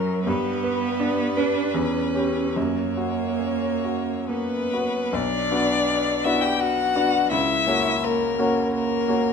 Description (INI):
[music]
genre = classical, slow romantic movement for piano trio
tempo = 63-88 BPM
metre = 3/4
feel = rubato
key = B minor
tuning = A4 = 439 Hz
[part]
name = rich violin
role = melody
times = 0.0-9.3 s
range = A#4 to G5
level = -25 LUFS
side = left 7 dB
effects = none
[part]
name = rich cello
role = second line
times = 0.0-9.3 s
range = F#3 to G4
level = -26 LUFS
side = right 8 dB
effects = none
[part]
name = bright baby grand piano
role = accompaniment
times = 0.0-9.3 s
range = B1 to B4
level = -25 LUFS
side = left 2 dB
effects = none
[sound]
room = moderate recital hall reverb, RT60 1.6 s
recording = none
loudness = -20 LUFS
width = side -6 dB against mid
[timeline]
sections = 0.0-5.1 A section; 5.1-9.3 B section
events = none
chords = 0.3 G; 1.8 C#m7b5/E; 2.6 F#; 5.1 Bm; 7.3 F#7/C#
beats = | 0.26 1.00 1.76 | 2.56 3.39 4.30 | 5.14 5.89 6.59 | 7.31 8.02 8.73